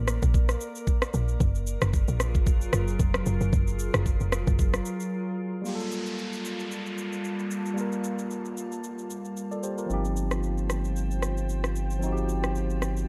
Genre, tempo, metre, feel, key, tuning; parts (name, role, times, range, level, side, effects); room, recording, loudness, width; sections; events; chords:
amapiano; 113 BPM; 4/4; swing 55% on 16ths; A4 = 444 Hz
glassy FM pad; sustained chords; 0.0-13.1 s; Gb3 to A5; -37 LUFS; equal; ensemble chorus, built-in reverb, sidechain pumping
woody log drum bass; bass; 0.0-4.8 s; F1 to Bb1; -29 LUFS; equal
smooth R&B drum kit; drums; 0.1-13.1 s; kick drum, rim click, shaker; -30 LUFS; equal
tine electric piano; accompaniment; 5.6-13.1 s; F3 to D5; -35 LUFS; equal
downlifter; sound effects; 5.7-9.9 s; -42 LUFS; equal
round analog bass; bass; 9.9-13.0 s; G1; -31 LUFS; equal
light reverb, digital ambience; dark, warm production; -28 LUFS; mono
0.0-5.7 A section; 5.7-13.1 B section
drop 0.0-5.7; break 5.1-5.7
0.0 Bbmaj7; 1.4 Gbmaj9; 5.7 Gm9; 9.9 Eb69/G